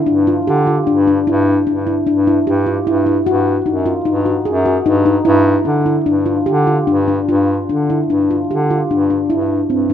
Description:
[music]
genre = contemporary instrumental, chamber music in an uneven meter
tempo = 150 BPM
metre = 5/4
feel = straight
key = unclear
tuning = A4 = 441 Hz
[part]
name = handpan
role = arpeggios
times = 0.0-9.9 s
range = C4 to Ab4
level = -14 LUFS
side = left 1 dB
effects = none
[part]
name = warm bass clarinet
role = bass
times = 0.1-9.9 s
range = Gb2 to D3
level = -17 LUFS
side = equal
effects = none
[sound]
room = light reverb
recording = close, detailed microphones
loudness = -12 LUFS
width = side -9 dB against mid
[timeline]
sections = 0.0-7.3 A section; 7.3-9.9 A section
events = none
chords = 0.0 G5; 3.3 Ebm/Gb; 5.3 G5; 9.3 C/G

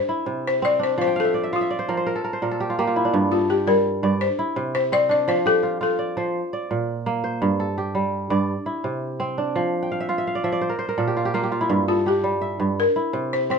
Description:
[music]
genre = west african traditional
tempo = 112 BPM (dotted quarters)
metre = 12/8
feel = straight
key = unclear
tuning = A4 = 440 Hz
[part]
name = balafon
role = melody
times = 0.0-6.3, 11.9-13.6 s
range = F4 to D5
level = -21 LUFS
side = left 4 dB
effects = none
[part]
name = kora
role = arpeggios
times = 0.0-13.6 s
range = G2 to G5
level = -22 LUFS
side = right 2 dB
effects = none
[sound]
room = moderate studio ambience, RT60 0.5 s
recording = minimal, uncompressed stereo recording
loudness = -20 LUFS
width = side -5 dB against mid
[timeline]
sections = 0.0-13.6 A section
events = kora fill 1.1-3.1, 9.8-11.7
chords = 0.0 C; 1.0 F; 2.1 N.C.; 3.1 Gm; 4.2 C; 5.3 F; 6.3 Bb; 7.4 G5; 8.5 C; 9.6 Dmadd9/F; 10.6 N.C.; 11.7 Fmaj9/G; 12.8 C

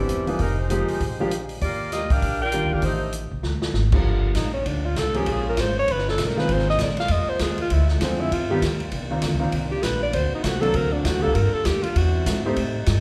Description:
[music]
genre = jazz, big band swing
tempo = 197 BPM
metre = 4/4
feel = swing 60% on 8ths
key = G minor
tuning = A4 = 439 Hz
[part]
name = clear saxophone section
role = melody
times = 0.0-3.1 s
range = G3 to G5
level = -29 LUFS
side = equal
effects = none
[part]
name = clear grand piano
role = accompaniment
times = 0.0-12.6 s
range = D3 to C5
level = -29 LUFS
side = equal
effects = none
[part]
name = upright bass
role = bass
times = 0.0-13.0 s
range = E1 to A2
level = -27 LUFS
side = equal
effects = none
[part]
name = vintage drum kit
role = drums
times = 0.1-13.0 s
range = crash cymbal, hi-hat, kick drum, ride cymbal, snare drum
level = -29 LUFS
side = equal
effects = none
[part]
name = warm trombone section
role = sustained chords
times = 4.0-13.0 s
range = C3 to F#4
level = -36 LUFS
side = equal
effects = none
[part]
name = clear alto saxophone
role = melody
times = 4.4-12.5 s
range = Ab3 to F5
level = -27 LUFS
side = equal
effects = none
[sound]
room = wet recital hall reverb, RT60 1.3 s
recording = recorded in a church or concert hall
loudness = -23 LUFS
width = mono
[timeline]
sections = 0.0-4.0 A section; 4.0-13.0 B section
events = drum fill 3.4-3.7; alto saxophone solo 4.0-13.0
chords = 0.4 Fm11; 1.0 Bb7; 1.6 Ebmaj9; 2.8 Am7b5; 3.4 Bb7; 4.0 Gm7; 5.3 Bbm7; 5.9 Eb7b13; 6.5 Ab69; 7.7 Dm7b5; 8.3 G7alt; 8.9 Cm11; 10.1 D7b13; 11.4 Gm7; 12.0 E7b13

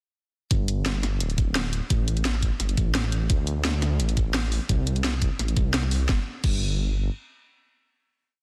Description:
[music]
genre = liquid drum and bass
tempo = 172 BPM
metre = 4/4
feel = straight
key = unclear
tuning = A4 = 440 Hz
[part]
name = dark detuned saw bass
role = bass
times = 0.5-7.1 s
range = D1 to D2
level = -28 LUFS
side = equal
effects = none
[part]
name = drum and bass drum kit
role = drums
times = 0.5-6.5 s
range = crash cymbal, hi-hat, snare drum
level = -31 LUFS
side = equal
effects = studio reverb
[part]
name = electronic kick drum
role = drums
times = 0.5-6.5 s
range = none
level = -26 LUFS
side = equal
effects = studio reverb
[sound]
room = little or no reverb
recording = dense, heavily limited modern master, lossy compression artefacts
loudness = -25 LUFS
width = mono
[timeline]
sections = 0.5-6.1 drop; 6.1-8.4 final note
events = drop 0.5-6.1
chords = none

